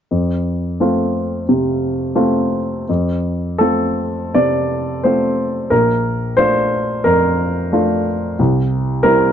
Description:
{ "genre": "neoclassical minimalist piano", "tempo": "78-92 BPM", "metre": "4/4", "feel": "rubato", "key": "F major", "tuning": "A4 = 440 Hz", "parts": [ { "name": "warm upright piano", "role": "solo", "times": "0.1-9.3 s", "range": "Bb1 to D5", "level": "-15 LUFS", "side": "equal", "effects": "none" } ], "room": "light reverb", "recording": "dark, warm production, nothing above 7.5 kHz", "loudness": "-15 LUFS", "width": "side -9 dB against mid", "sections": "0.1-2.9 A section; 2.9-9.3 B section", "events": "none", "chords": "0.1 F; 5.7 Bbmaj7; 8.4 C7" }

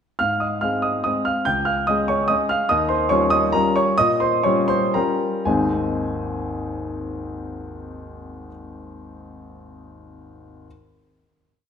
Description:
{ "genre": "classical, piano waltz", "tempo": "111-151 BPM", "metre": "3/4", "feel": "rubato", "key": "Ab major", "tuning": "A4 = 440 Hz", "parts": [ { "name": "warm concert grand piano", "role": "solo", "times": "0.2-10.7 s", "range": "Ab1 to G6", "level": "-20 LUFS", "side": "equal", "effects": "none" } ], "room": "moderate recital hall reverb, RT60 1.8 s", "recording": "minimal, uncompressed stereo recording", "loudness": "-18 LUFS", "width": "side -7 dB against mid", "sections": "0.2-5.5 A section; 5.5-8.5 final chord", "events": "slowing down 2.1-5.5", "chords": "0.2 Ab; 1.5 Db; 2.7 Eb9; 5.5 Ab" }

